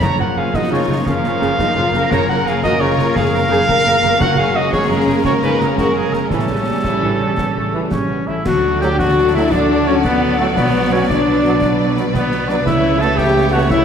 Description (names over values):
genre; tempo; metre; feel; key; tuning
cinematic, heroic adventure film score; 114 BPM (dotted quarters); 12/8; straight; D major from 8.5 s; A4 = 440 Hz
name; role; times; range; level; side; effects
dark symphonic violin section; melody; 0.0-13.8 s; A#3 to D5; -26 LUFS; left 5 dB; none
warm symphonic violin section; second line; 0.0-13.8 s; A3 to B4; -26 LUFS; left 2 dB; none
rich symphonic viola section; accompaniment; 0.0-13.8 s; C#3 to A3; -24 LUFS; right 2 dB; none
warm trombone section; sustained chords; 0.0-13.6 s; A2 to A#3; -25 LUFS; right 3 dB; none
concert harp; arpeggios; 0.0-13.8 s; F#2 to F#5; -27 LUFS; left 7 dB; none
clear trumpet; stabs; 0.0-13.8 s; A3 to A#5; -20 LUFS; right 1 dB; none
rich symphonic cello section; bass; 0.0-13.8 s; B2 to A#4; -23 LUFS; right 2 dB; none
warm symphonic double bass section; bass; 0.0-13.8 s; F#1 to D2; -24 LUFS; right 4 dB; none
concert snare drum, clash cymbals and concert bass drum; drums; 0.0-13.8 s; none; -24 LUFS; equal; none
timpani; percussion; 0.0-0.5, 4.2-4.7 s; F#2; -25 LUFS; equal; none
clear oboe; second line; 7.9-13.8 s; A4 to A5; -24 LUFS; right 1 dB; none
mellow French horn section; sustained chords; 7.9-13.8 s; A3 to A4; -18 LUFS; left 3 dB; none
large flute ensemble; second line; 9.5-13.8 s; B4 to F#5; -24 LUFS; left 3 dB; none
room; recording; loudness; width
wet scoring stage reverb, RT60 1.8 s; none; -13 LUFS; side -7 dB against mid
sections
0.0-8.5 A section; 8.5-13.8 B section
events
none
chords
0.0 A#m/F#; 4.2 F#add9; 6.3 A7; 8.5 D; 10.6 Bm; 12.7 Aadd9/C#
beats
| 0.02 0.54 1.07 1.59 | 2.12 2.64 3.17 3.69 | 4.21 4.73 5.25 5.78 | 6.31 6.85 7.39 7.92 | 8.46 8.99 9.51 10.04 | 10.57 11.09 11.62 12.14 | 12.66 13.18 13.71